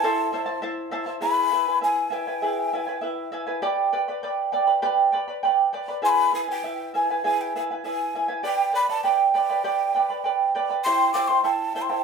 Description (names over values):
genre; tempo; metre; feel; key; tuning
andean folk; 100 BPM; 2/4; straight; unclear; A4 = 442 Hz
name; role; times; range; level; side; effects
breathy mellow quena; melody; 0.0-3.3, 6.1-12.0 s; G5 to D6; -25 LUFS; left 2 dB; none
charango; accompaniment; 0.0-12.0 s; E4 to B5; -23 LUFS; right 3 dB; none
room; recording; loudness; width
wet studio reverb, RT60 0.7 s; band playing live in one room; -21 LUFS; side -5 dB against mid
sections
0.0-1.2 A section; 1.2-6.0 B section; 6.0-12.0 C section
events
none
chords
0.0 Am; 1.2 E; 3.6 G; 6.0 E; 8.4 G; 10.9 C